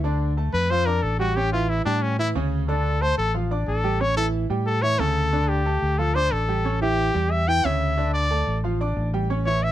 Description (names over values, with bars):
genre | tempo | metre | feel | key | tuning
latin | 182 BPM | 4/4 | straight | D minor | A4 = 439 Hz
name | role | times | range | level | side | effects
bright concert grand piano | accompaniment | 0.0-9.7 s | C#3 to D6 | -28 LUFS | right 4 dB | none
fingered electric bass | bass | 0.0-9.7 s | A1 to A2 | -24 LUFS | left 1 dB | none
clear trumpet | melody | 0.5-9.7 s | C#4 to G5 | -23 LUFS | left 1 dB | none
room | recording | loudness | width
light reverb | close, detailed microphones | -20 LUFS | side -12 dB against mid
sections
0.0-9.7 A section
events
trumpet solo 0.0-9.7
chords
0.0 Dm; 1.4 A7; 2.7 Dm; 4.0 A7; 5.3 Dm; 6.6 A7; 8.0 Dm